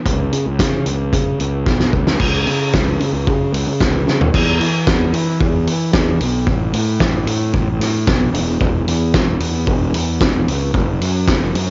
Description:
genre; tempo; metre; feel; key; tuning
indie rock; 112 BPM; 4/4; straight; unclear; A4 = 438 Hz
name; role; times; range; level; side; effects
fuzz fingered electric bass; bass; 0.1-11.7 s; E1 to E3; -17 LUFS; equal; overdrive
loose indie drum kit; drums; 0.1-11.7 s; crash cymbal, hi-hat, kick drum, snare drum, toms; -17 LUFS; equal; none
room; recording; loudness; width
little or no reverb; home recording on cassette, nothing above 7.6 kHz; -14 LUFS; side -40 dB against mid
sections
0.0-2.2 A section; 2.2-4.3 B section; 4.3-11.7 C section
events
drum fill 1.7-2.2, 4.1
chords
none

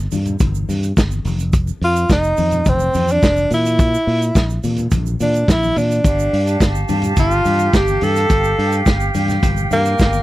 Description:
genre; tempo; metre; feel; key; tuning
disco; 106 BPM; 4/4; straight; G dorian; A4 = 440 Hz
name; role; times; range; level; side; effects
fingered electric bass; bass; 0.0-10.2 s; F1 to Bb2; -19 LUFS; equal; none
vintage drum kit; drums; 0.1-10.1 s; hi-hat, kick drum, snare drum; -18 LUFS; equal; none
congas; percussion; 0.1-10.2 s; none; -28 LUFS; left 6 dB; none
egg shaker; percussion; 0.1-10.2 s; none; -36 LUFS; right 22 dB; none
breathy tenor saxophone; melody; 1.8-10.2 s; Bb3 to A4; -17 LUFS; equal; none
small flute group; sustained chords; 6.0-10.2 s; G4 to A5; -23 LUFS; right 2 dB; none
room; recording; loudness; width
little or no reverb; dry, close 1970s-style studio recording; -14 LUFS; side -16 dB against mid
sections
0.0-10.2 A section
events
none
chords
0.0 N.C.; 1.2 Cmadd11/F (rootless); 3.5 Bb; 6.0 G7sus2

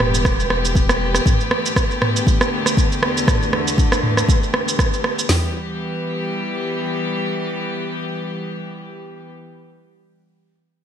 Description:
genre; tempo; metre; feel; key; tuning
afro house; 119 BPM; 4/4; swing 55% on 16ths; E minor; A4 = 440 Hz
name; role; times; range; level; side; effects
rich chamber string section; sustained chords; 0.0-9.3 s; E2 to G4; -24 LUFS; left 1 dB; sidechain pumping
round analog bass; bass; 0.0-1.2 s; E1; -23 LUFS; equal; sidechain pumping
afro-pop drum kit; drums; 0.0-5.3 s; rim click, shaker, toms; -19 LUFS; right 2 dB; small room ambience, gated reverb
afro-pop drum kit; drums; 0.2-5.4 s; hi-hat, kick drum, snare drum, toms; -17 LUFS; equal; small room ambience
room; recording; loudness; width
wet lush hall reverb, RT60 1.8 s, digital ambience; bright 1980s-style digital production; -17 LUFS; side -9 dB against mid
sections
0.0-5.3 A section; 5.3-9.3 B section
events
none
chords
0.0 Em; 1.3 Gadd9/E; 5.3 Em

